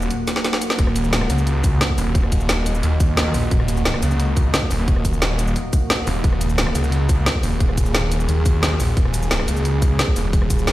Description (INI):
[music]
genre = dark technical drum and bass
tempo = 176 BPM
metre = 4/4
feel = straight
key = Eb minor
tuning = A4 = 436 Hz
[part]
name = deep dark ambient pad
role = sustained chords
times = 0.0-10.7 s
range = Bb3 to Gb5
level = -26 LUFS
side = right 1 dB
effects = chorus, built-in reverb, sidechain pumping
[part]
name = snarling distorted saw bass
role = bass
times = 0.0-10.7 s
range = Eb1 to Eb2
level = -20 LUFS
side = equal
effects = distortion, tube saturation, sidechain pumping
[part]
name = drum and bass drum kit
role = drums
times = 0.0-10.7 s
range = cabasa, hi-hat, rim click, snare drum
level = -23 LUFS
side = equal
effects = overdrive
[part]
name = electronic kick drum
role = drums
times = 0.8-10.6 s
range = none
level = -18 LUFS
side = equal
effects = none
[sound]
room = light reverb, digital ambience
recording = played on a big sound system in a bare room, large studio reverb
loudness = -17 LUFS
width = side -16 dB against mid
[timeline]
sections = 0.0-10.7 A section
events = drum fill 0.3-0.8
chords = 0.0 Ebm